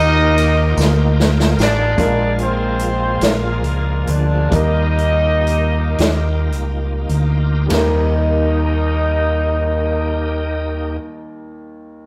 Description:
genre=slow gospel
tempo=32-50 BPM (dotted quarters)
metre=6/8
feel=straight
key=Eb major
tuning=A4 = 440 Hz
part: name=clear horn section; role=melody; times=0.0-11.0 s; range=Bb3 to Eb5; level=-22 LUFS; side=equal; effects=none
part: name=warm grand piano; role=accompaniment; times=0.0-12.1 s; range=Eb2 to Bb4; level=-27 LUFS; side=equal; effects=none
part: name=bright tonewheel organ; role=sustained chords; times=0.0-11.0 s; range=Eb3 to G5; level=-28 LUFS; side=equal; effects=slow rotary speaker, chorus vibrato
part: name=deep dub fingered electric bass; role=bass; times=0.0-11.0 s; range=A1 to Eb2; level=-20 LUFS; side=equal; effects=none
part: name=swinging big-band drum kit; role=drums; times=0.4-8.0 s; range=hi-hat, kick drum, ride cymbal, snare drum, toms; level=-23 LUFS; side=equal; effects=none
part: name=tambourine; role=percussion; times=0.4-2.0 s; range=none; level=-37 LUFS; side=equal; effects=none
room=wet stone room reverb, RT60 1.0 s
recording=rough rehearsal-room recording, tube saturation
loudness=-17 LUFS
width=mono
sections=0.0-2.0 A section; 2.0-7.7 B section; 7.7-11.5 C section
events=drum fill 0.8-2.0; slowing down 2.0-7.7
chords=0.0 Ebmaj7; 2.0 Bb7; 4.5 Ebmaj7; 7.7 Eb

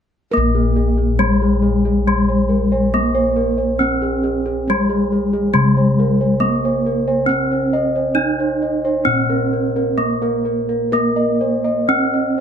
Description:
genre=Javanese gamelan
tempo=68 BPM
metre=4/4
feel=uneven beats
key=unclear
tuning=A4 = 442 Hz
part: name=gamelan-type bronze metallophone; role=melody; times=0.3-12.4 s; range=Ab3-45c to Eb4-35c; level=-17 LUFS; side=equal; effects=none
part: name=gamelan-type bossed gongs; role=bass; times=0.3-12.4 s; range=Bb1 to Bb4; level=-21 LUFS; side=left 2 dB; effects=none
part: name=gamelan-type bossed gongs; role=arpeggios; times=0.5-12.4 s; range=Ab4-45c to Eb5-35c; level=-21 LUFS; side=right 2 dB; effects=none
room=little or no reverb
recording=none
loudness=-15 LUFS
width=side -8 dB against mid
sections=0.3-12.4 A section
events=none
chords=none

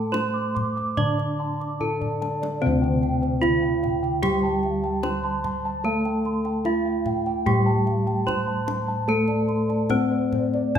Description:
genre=Javanese gamelan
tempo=74 BPM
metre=4/4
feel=straight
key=unclear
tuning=A4 = 440 Hz
part: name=gamelan-type bronze metallophone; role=melody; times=0.0-10.8 s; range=C4-25c to D5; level=-26 LUFS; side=left 1 dB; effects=none
part: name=gamelan-type bronze metallophone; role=accompaniment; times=0.0-10.8 s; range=C3-25c to D4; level=-28 LUFS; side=right 2 dB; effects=none
part: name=gamelan-type bronze metallophone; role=arpeggios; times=0.0-10.8 s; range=C5-25c to D6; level=-32 LUFS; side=right 6 dB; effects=none
part: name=gamelan-type bossed gongs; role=bass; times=0.0-10.8 s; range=D2 to C5-25c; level=-29 LUFS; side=left 1 dB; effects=none
part: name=gamelan-type bossed gongs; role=arpeggios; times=0.1-10.8 s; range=C5-25c to D6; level=-31 LUFS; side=left 3 dB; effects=none
part: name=kendang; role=percussion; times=0.1-10.8 s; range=none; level=-31 LUFS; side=left 2 dB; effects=none
room=wet recital hall reverb, RT60 1.6 s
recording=minimal, uncompressed stereo recording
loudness=-21 LUFS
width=side -8 dB against mid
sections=0.0-2.6 A section; 2.6-10.8 B section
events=drum fill 1.8-2.6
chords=none

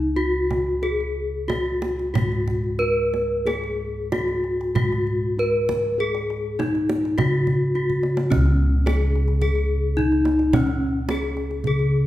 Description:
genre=Javanese gamelan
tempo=91-107 BPM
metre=4/4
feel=straight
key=Db slendro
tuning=A4 = 438 Hz
part: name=gamelan-type bronze metallophone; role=melody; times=0.0-12.1 s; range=Db4 to Cb5-45c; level=-22 LUFS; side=left 1 dB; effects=none
part: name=gamelan-type bossed gongs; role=bass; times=0.0-12.1 s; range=Db2 to Ab4+25c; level=-24 LUFS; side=equal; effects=none
part: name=kendang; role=percussion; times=0.2-11.9 s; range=none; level=-27 LUFS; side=right 2 dB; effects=none
room=wet recital hall reverb, RT60 1.5 s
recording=recorded in a church or concert hall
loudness=-20 LUFS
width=side -14 dB against mid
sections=0.0-8.3 A section; 8.3-12.1 B section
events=drum fill 7.9-8.3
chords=none

